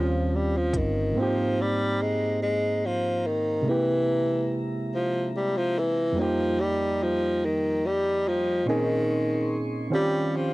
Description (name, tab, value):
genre	slow six-eight R&B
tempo	48 BPM (dotted quarters)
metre	6/8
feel	straight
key	Ab major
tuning	A4 = 441 Hz
part	warm tenor saxophone	melody	0.0-10.5 s	Eb3 to Ab3	-25 LUFS	left 1 dB	cassette tape
part	overdriven reed electric piano	accompaniment	0.0-10.5 s	F2 to Ab4	-28 LUFS	right 2 dB	none
part	vintage muted fingered electric bass	bass	0.0-1.1 s	G1 to Eb2	-27 LUFS	equal	none
part	smooth R&B drum kit	drums	0.7-0.9 s	hi-hat, kick drum	-30 LUFS	equal	overdrive
part	mellow tonewheel organ	sustained chords	1.2-10.5 s	Eb3 to Db6	-37 LUFS	left 1 dB	slow rotary speaker
room	light reverb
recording	home recording on cassette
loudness	-23 LUFS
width	side -19 dB against mid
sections	0.0-1.2 A section; 1.2-10.5 B section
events	none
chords	0.0 Eb13; 1.2 Abmaj9; 3.7 C7b13; 6.2 F9sus4; 8.7 Bbm11; 9.9 Eb13